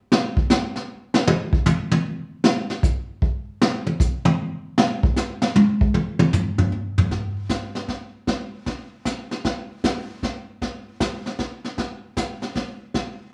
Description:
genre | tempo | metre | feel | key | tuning
jazz | 154 BPM | 3/4 | swing 66% on 8ths | none | none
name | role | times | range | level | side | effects
jazz brush drum kit | drums | 0.1-13.3 s | brushed snare drum, hi-hat, kick drum, snare drum, toms | -22 LUFS | equal | none
room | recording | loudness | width
wet club reverb, RT60 0.8 s | small room ambience | -23 LUFS | mono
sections
0.0-7.1 A section; 7.1-13.3 B section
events
drum solo 0.0-7.1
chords
none

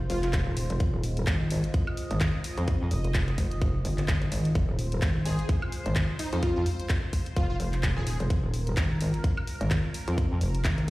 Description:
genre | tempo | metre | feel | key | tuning
bass house | 128 BPM | 4/4 | swing 57% on 16ths | F minor | A4 = 440 Hz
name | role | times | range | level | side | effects
sweeping resonant pad | sustained chords | 0.0-10.9 s | Ab3 to Eb5 | -39 LUFS | right 1 dB | chorus, sidechain pumping
metallic wobble bass | bass | 0.0-10.9 s | Eb1 to F2 | -27 LUFS | equal | distortion, chorus, overdrive, sidechain pumping
plucky unison lead | melody | 0.1-0.3, 5.3-8.2 s | Eb4 to Ab4 | -35 LUFS | equal | ensemble chorus, dub echo
garage drum kit | drums | 0.1-10.9 s | handclaps, hi-hat, woodblock | -36 LUFS | equal | none
electronic kick drum | drums | 0.3-10.8 s | none | -27 LUFS | equal | none
room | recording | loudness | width
digital ambience | played on a big sound system in a bare room, large studio reverb | -25 LUFS | side -19 dB against mid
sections
0.0-10.9 A section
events
none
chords
0.0 Fm

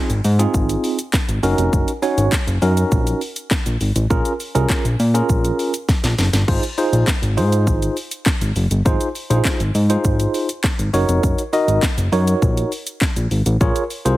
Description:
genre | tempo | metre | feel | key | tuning
dance-pop | 101 BPM | 4/4 | straight | Ab mixolydian | A4 = 441 Hz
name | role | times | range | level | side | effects
tine electric piano | accompaniment | 0.0-14.2 s | C4 to Eb5 | -20 LUFS | right 1 dB | medium stereo tremolo, sidechain pumping
fat analog bass | bass | 0.1-14.2 s | F1 to Bb2 | -18 LUFS | equal | sidechain pumping
house drum kit | drums | 0.1-14.2 s | crash cymbal, handclaps, hi-hat, kick drum, shaker, snare drum | -20 LUFS | equal | none
room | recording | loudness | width
little or no reverb | heavily compressed radio sound | -16 LUFS | side -16 dB against mid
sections
0.0-14.2 A section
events
drum fill 5.9-6.5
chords
0.0 Ab6; 1.4 Ebm7; 4.1 Bbm7; 6.5 Ab6; 10.9 Ebm7; 13.6 Bbm7

